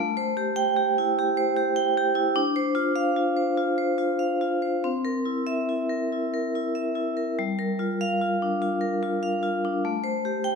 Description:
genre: classical, contemporary piece for solo vibraphone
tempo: 96 BPM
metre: 4/4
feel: uneven beats, rubato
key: G dorian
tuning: A4 = 440 Hz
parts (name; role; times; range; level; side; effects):
- vibraphone with medium hard mallets; solo; 0.0-10.6 s; G3 to G5; -23 LUFS; equal; none
room: moderate recital hall reverb, RT60 1.5 s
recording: none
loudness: -23 LUFS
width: side -4 dB against mid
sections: 0.0-10.6 A section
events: none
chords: 0.0 Am7; 2.4 Dm7; 4.8 C7; 7.4 Gm7; 9.9 Am7

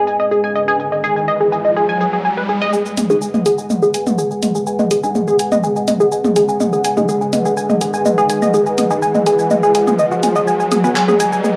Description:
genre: melodic techno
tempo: 124 BPM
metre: 4/4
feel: straight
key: G# minor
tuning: A4 = 439 Hz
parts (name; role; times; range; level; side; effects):
- dark analog pad; sustained chords; 0.0-11.6 s; G#3 to F#5; -23 LUFS; equal; chorus, phaser
- tight sequenced synth; arpeggios; 0.0-11.5 s; F#4 to G#5; -18 LUFS; equal; chorus, vintage 12-bit sampler grit, tape echo
- riser; sound effects; 0.0-11.6 s; none; -28 LUFS; equal; none
- house drum kit; drums; 0.1-11.5 s; handclaps, hi-hat, rim click, shaker, toms; -22 LUFS; equal; low-pass filter on perc, low-pass filter on hats, low-pass filter on toms, low-pass filter on snare, low-pass filter on room
- filtered dub chord stab; stabs; 3.1-10.9 s; G#3 to B4; -26 LUFS; equal; phaser, tape echo
room: moderate recital hall reverb, RT60 1.5 s, digital ambience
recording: dry, gritty hardware recording, transformer saturation, high-pass filter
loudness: -16 LUFS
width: mono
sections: 0.0-2.7 A section; 2.7-11.6 B section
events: filter sweep on synth arpeggio sound 0.0-2.7; riser 0.0-2.7, 2.7-11.6; build-up 2.7-11.6; filter sweep on synth stab 2.7-11.6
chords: 0.0 B/G#; 2.7 G#m7

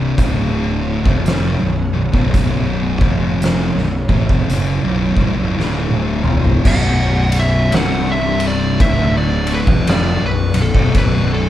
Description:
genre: stoner and doom metal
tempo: 56 BPM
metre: 4/4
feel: swing 62% on 8ths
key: B minor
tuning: A4 = 439 Hz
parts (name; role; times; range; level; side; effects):
- string machine, violas; sustained chords; 0.0-11.5 s; C3 to F#5; -31 LUFS; equal; none
- thick fuzz guitar; riff; 0.0-11.5 s; B1 to E#3; -20 LUFS; left 5 dB; distortion
- thick fuzz guitar; riff; 0.0-11.5 s; B1 to E#3; -20 LUFS; right 3 dB; distortion
- fuzz fingered electric bass; bass; 0.0-11.5 s; B0 to A1; -21 LUFS; equal; overdrive
- oversized low-tuned drum kit; drums; 0.2-11.3 s; crash cymbal, hi-hat, kick drum, ride cymbal, snare drum, toms; -18 LUFS; equal; none
- fuzz lead guitar; melody; 6.7-11.5 s; A4 to F#5; -21 LUFS; equal; distortion
room: moderate large studio reverb, RT60 0.8 s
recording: band playing live in one room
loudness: -13 LUFS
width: side -12 dB against mid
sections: 0.0-6.7 A section; 6.7-11.5 B section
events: drum fill 5.6-6.7; lead electric guitar solo 6.7-11.5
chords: 0.2 Bm; 6.7 B5; 7.7 C5; 8.8 Bm

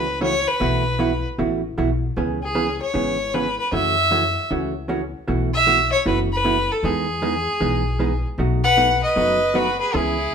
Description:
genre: country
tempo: 154 BPM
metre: 4/4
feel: swing 64% on 8ths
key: unclear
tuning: A4 = 440 Hz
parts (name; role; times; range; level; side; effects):
- rich fiddle; melody; 0.0-10.3 s; G#4 to F#5; -20 LUFS; left 1 dB; none
- vintage hollow-body jazz guitar; accompaniment; 0.0-10.2 s; B2 to G#4; -24 LUFS; right 3 dB; none
- upright bass; bass; 0.0-10.3 s; F#1 to F#2; -26 LUFS; left 1 dB; none
- clear fiddle; second line; 8.6-10.3 s; E4 to B4; -24 LUFS; right 1 dB; none
room: moderate stone room reverb, RT60 1.0 s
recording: band playing live in one room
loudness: -18 LUFS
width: side -7 dB against mid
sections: 0.0-10.3 A section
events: none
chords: 0.0 F#m7; 0.6 B7sus4; 2.2 C#m7; 3.7 F#m7; 5.3 B7sus4; 6.8 Emaj7; 8.4 B7

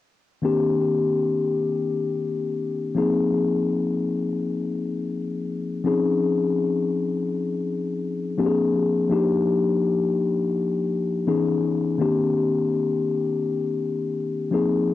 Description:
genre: R&B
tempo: 83 BPM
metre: 4/4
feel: swing 58% on 16ths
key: unclear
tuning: A4 = 441 Hz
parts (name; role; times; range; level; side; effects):
- mellow tine electric piano; solo; 0.4-14.9 s; Eb3 to Ab4; -21 LUFS; left 3 dB; tape echo
room: light reverb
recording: home recording on cassette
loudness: -21 LUFS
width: side -14 dB against mid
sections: 0.4-12.0 A section; 12.0-14.9 B section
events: none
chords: 0.4 Cm7; 3.0 Ab69; 5.9 Dbmaj7; 8.4 Bb9; 9.1 Ebmaj9; 11.3 Dbm7; 12.0 Cm7

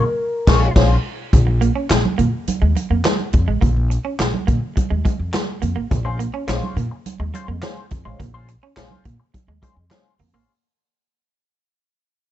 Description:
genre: funk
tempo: 105 BPM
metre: 4/4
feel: straight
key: Bb minor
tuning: A4 = 441 Hz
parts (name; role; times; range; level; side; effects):
- nasal lead guitar with a parked wah; melody; 0.0-0.7 s; Bb4; -24 LUFS; left 2 dB; overdrive
- clean electric guitar; accompaniment; 0.0-1.0, 5.9-10.5 s; Ab3 to Db5; -26 LUFS; left 5 dB; wah
- upright bass; bass; 0.5-10.4 s; A1 to Bb2; -18 LUFS; equal; none
- swinging big-band drum kit; drums; 0.5-10.3 s; crash cymbal, handclaps, hi-hat, kick drum, snare drum; -18 LUFS; equal; none
- congas; percussion; 1.3-10.3 s; none; -27 LUFS; right 5 dB; none
- electric guitar at the edge of break-up; riff; 1.5-10.4 s; Ab3 to Db4; -26 LUFS; right 8 dB; none
room: little or no reverb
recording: dark, warm production, nothing above 8.0 kHz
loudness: -17 LUFS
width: side -12 dB against mid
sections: 0.0-1.3 A section; 1.3-10.5 B section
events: band accent 0.2-1.3; fade-out 1.3-10.5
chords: 0.0 Bbm9

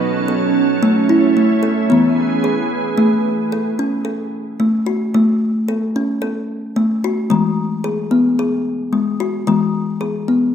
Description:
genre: world meditative, meditative tuned percussion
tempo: 111 BPM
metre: 4/4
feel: swing 54% on 16ths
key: A major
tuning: A4 = 440 Hz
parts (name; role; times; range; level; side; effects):
- soft additive organ-like pad; sustained chords; 0.0-3.0 s; E3 to A4; -18 LUFS; right 4 dB; ensemble chorus, built-in reverb
- kalimba; arpeggios; 0.0-10.5 s; E3 to A4; -16 LUFS; left 2 dB; none
room: wet spring reverb, RT60 1.8 s, small room ambience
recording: none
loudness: -15 LUFS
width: side -8 dB against mid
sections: 0.0-3.0 A section; 3.0-10.5 B section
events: none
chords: 0.0 F#m; 0.8 A; 1.9 E; 3.0 A; 7.3 E

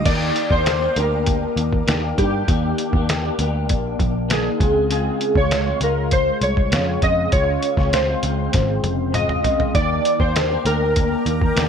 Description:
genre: indie pop, bedroom pop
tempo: 99 BPM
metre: 4/4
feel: straight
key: Eb major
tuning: A4 = 444 Hz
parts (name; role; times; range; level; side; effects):
- warbly lo-fi synth keys; melody; 0.0-11.7 s; G4 to Eb5; -21 LUFS; equal; ensemble chorus, plate reverb, digital delay
- electric guitar through a small old amp; accompaniment; 0.0-11.7 s; Db3 to G4; -24 LUFS; left 3 dB; ensemble chorus, warbly pitch drift
- shimmering ambient pad; sustained chords; 0.0, 10.5-11.7 s; Bb4 to D6; -35 LUFS; right 1 dB; chorus, built-in reverb, phaser
- vintage muted picked electric bass; bass; 0.0-11.7 s; F1 to G2; -23 LUFS; equal; none
- lo-fi sampler-style drum kit; drums; 0.1-11.7 s; crash cymbal, hi-hat, kick drum, snare drum, toms; -22 LUFS; equal; none
room: moderate studio reverb, RT60 0.6 s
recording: none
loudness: -17 LUFS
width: side -7 dB against mid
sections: 0.1-11.7 A section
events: drum fill 8.5-9.7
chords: 0.1 Ebmaj7; 4.6 Dbmaj7; 9.7 Ebmaj7

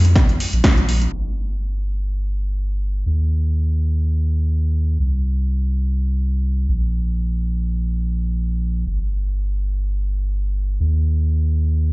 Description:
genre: deep house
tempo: free time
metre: none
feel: none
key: unclear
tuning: A4 = 439 Hz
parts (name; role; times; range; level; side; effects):
- warm sub bass; bass; 0.0-11.9 s; G1 to F2; -18 LUFS; equal; sidechain pumping
- deep house drum kit; drums; 0.0-1.1 s; hi-hat, snare drum; -22 LUFS; equal; overdrive, studio reverb
- electronic kick drum; drums; 0.2-0.7 s; none; -15 LUFS; equal; overdrive, studio reverb
room: little or no reverb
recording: played on a big sound system in a bare room, stone room reverb, low-pass filter, nothing above 7.9 kHz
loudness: -18 LUFS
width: side -25 dB against mid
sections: 0.0-1.1 A section; 1.1-11.9 B section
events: filter sweep 1.1-11.9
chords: none

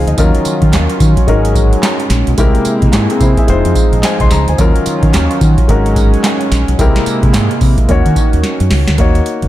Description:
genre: R&B, new jack swing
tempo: 109 BPM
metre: 4/4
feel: swing 61% on 16ths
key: Eb dorian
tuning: A4 = 440 Hz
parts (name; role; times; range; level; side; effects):
- warm grand piano; accompaniment; 0.0-9.5 s; F3 to C6; -17 LUFS; left 3 dB; none
- chorused pulse-width pad; sustained chords; 0.0-9.0 s; C3 to Gb4; -18 LUFS; right 2 dB; none
- deep dub fingered electric bass; bass; 0.0-9.5 s; F1 to Eb3; -13 LUFS; equal; none
- booming analog drum machine; drums; 0.1-9.5 s; handclaps, hi-hat, kick drum, snare drum, tambourine; -13 LUFS; equal; gated reverb
room: digital ambience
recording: none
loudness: -9 LUFS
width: side -14 dB against mid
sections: 0.0-9.0 A section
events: drum fill 8.4-9.0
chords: 0.2 Ebm9; 1.3 Ab9sus4; 2.4 C7b13; 3.5 Fm7; 4.6 Ebm9; 5.7 Ab9sus4; 6.8 C7b13; 7.9 Ebm7

